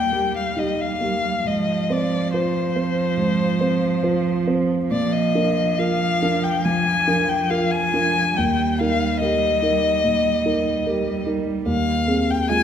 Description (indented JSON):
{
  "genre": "classical, slow romantic movement for piano trio",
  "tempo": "70 BPM",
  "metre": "4/4",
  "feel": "uneven beats, rubato",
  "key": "Eb major",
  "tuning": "A4 = 440 Hz",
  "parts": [
    { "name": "rich violin", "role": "melody", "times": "0.0-12.6 s", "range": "C5 to Ab5", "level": "-22 LUFS", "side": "left 4 dB", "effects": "none" },
    { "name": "clear cello", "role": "second line", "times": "0.0-12.6 s", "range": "F3 to Ab3", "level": "-25 LUFS", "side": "right 6 dB", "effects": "none" },
    { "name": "dark concert grand piano", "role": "accompaniment", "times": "0.0-12.6 s", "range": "Eb2 to C5", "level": "-22 LUFS", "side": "right 1 dB", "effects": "none" }
  ],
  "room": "wet concert hall reverb, RT60 1.9 s",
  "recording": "recorded in a church or concert hall",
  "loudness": "-18 LUFS",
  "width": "side -8 dB against mid",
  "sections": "0.0-12.6 A section",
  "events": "none",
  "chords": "0.0 Eb; 1.5 Fm/Ab; 4.9 Bb; 8.4 Eb; 11.7 Fm7/Eb"
}